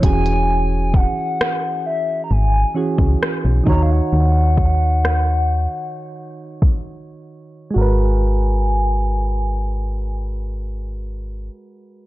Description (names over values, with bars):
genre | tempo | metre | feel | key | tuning
contemporary R&B | 66 BPM | 4/4 | straight | G# minor | A4 = 436 Hz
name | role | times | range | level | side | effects
hollow clarinet-like synth lead | melody | 0.0-11.5 s | E5 to A#5 | -23 LUFS | left 1 dB | chorus, ping-pong delay
soft electric-piano-like synth keys | accompaniment | 0.0-12.1 s | D#3 to C#5 | -25 LUFS | right 3 dB | chorus
solid FM bass | bass | 0.0-11.5 s | E1 to D#2 | -17 LUFS | equal | none
smooth R&B drum kit | drums | 0.0-6.8 s | hi-hat, kick drum, rim click | -18 LUFS | equal | none
room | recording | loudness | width
little or no reverb | dark, warm production, low-pass filter | -16 LUFS | side -17 dB against mid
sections
0.0-7.8 A section; 7.8-11.4 B section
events
filter sweep 0.0-7.8; break 6.8-7.8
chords
0.0 E69; 3.7 D#m7; 7.8 G#m9